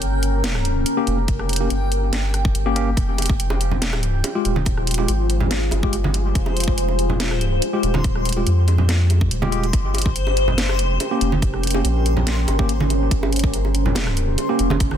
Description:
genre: deep dubstep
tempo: 142 BPM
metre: 4/4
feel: swing 53% on 16ths, half-time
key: unclear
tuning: A4 = 440 Hz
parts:
  - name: deep dark ambient pad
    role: sustained chords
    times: 0.0-15.0 s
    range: Db4 to Bb4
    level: -27 LUFS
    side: equal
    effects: chorus, built-in reverb
  - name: soft dub sub bass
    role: bass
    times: 0.0-15.0 s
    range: Eb1 to F2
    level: -20 LUFS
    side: equal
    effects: none
  - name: garage drum kit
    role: drums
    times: 0.0-15.0 s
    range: hi-hat, rim click, snare drum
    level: -26 LUFS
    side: equal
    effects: studio reverb
  - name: backwards swelling texture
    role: texture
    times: 0.0-15.0 s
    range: C5 to G5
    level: -29 LUFS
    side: left 2 dB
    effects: built-in reverb
  - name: tine electric piano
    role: stabs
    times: 1.0-14.7 s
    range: Ab3 to G4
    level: -26 LUFS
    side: left 1 dB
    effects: medium stereo tremolo, low-pass filter, dub echo
  - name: electronic kick drum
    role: drums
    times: 1.3-14.9 s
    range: none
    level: -21 LUFS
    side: equal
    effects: studio reverb
  - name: bongos and congas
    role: percussion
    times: 3.2-15.0 s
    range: none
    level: -27 LUFS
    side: right 4 dB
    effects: dub echo
room: little or no reverb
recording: dense, heavily limited modern master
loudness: -17 LUFS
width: side -9 dB against mid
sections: 0.0-15.0 A section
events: none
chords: 0.0 Gdim; 3.0 Fmadd9; 9.7 Gdim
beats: 0.01 0.44 0.86 | 1.28 1.70 2.13 2.55 | 2.97 3.39 3.82 4.24 | 4.66 5.08 5.51 5.93 | 6.35 6.78 7.20 7.62 | 8.04 8.46 8.89 9.31 | 9.73 10.15 10.58 11.00 | 11.42 11.85 12.27 12.69 | 13.11 13.54 13.96 14.38 | 14.80

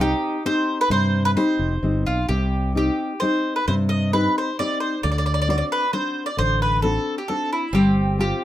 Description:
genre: italian folk, Italian serenade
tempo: 132 BPM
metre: 3/4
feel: straight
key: C harmonic minor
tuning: A4 = 440 Hz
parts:
  - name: mandolin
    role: melody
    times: 0.0-8.4 s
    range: E4 to Eb5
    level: -23 LUFS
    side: right 1 dB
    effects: none
  - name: mandolin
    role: second line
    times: 0.0-2.0, 7.7-8.4 s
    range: C4 to Eb4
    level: -33 LUFS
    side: right 4 dB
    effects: none
  - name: nylon-string guitar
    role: accompaniment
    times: 0.0-8.4 s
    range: C3 to G4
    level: -24 LUFS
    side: left 2 dB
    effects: none
  - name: fretless electric bass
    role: bass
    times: 0.0-8.3 s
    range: F1 to G2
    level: -22 LUFS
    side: equal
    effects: none
room: wet studio reverb, RT60 0.6 s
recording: none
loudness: -19 LUFS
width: side -13 dB against mid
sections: 0.0-2.3 A section; 2.3-8.4 A section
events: none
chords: 0.0 Cm; 5.0 D7; 7.7 G7sus4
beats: 0.44 | 0.90 1.36 1.82 | 2.29 2.75 3.21 | 3.67 4.13 4.58 | 5.03 5.47 5.92 | 6.37 6.82 7.28 | 7.73 8.19

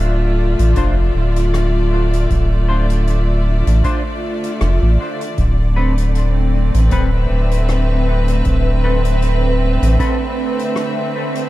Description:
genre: ambient dub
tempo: 78 BPM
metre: 4/4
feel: swing 55% on 16ths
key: D dorian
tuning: A4 = 441 Hz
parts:
  - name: bright studio string section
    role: sustained chords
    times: 0.0-11.5 s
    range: D3 to E5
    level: -21 LUFS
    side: equal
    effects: none
  - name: warm sub bass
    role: bass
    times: 0.0-10.0 s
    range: D1 to A1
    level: -14 LUFS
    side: equal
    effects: none
  - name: soft-mallet drum kit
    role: drums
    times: 0.6-11.5 s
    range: hi-hat, rim click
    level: -32 LUFS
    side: left 2 dB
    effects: dub echo
  - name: semi-hollow electric guitar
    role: stabs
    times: 0.8-10.2 s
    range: C4 to C5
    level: -27 LUFS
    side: left 1 dB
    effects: analog chorus, dub echo
  - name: electronic kick drum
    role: drums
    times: 0.8-10.2 s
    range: none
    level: -21 LUFS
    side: equal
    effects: none
  - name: bubbling stepped-filter texture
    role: texture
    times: 5.4-11.5 s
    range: C4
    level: -28 LUFS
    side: equal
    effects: chorus, built-in reverb
room: light reverb, small room ambience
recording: none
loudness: -14 LUFS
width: side -16 dB against mid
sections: 0.0-11.5 A section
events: none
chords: 0.0 Dm; 5.4 Amadd9/D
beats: 0.00 0.77 1.53 | 2.30 3.07 3.84 4.61 | 5.38 6.15 6.92 7.69 | 8.46 9.23 10.00 10.77

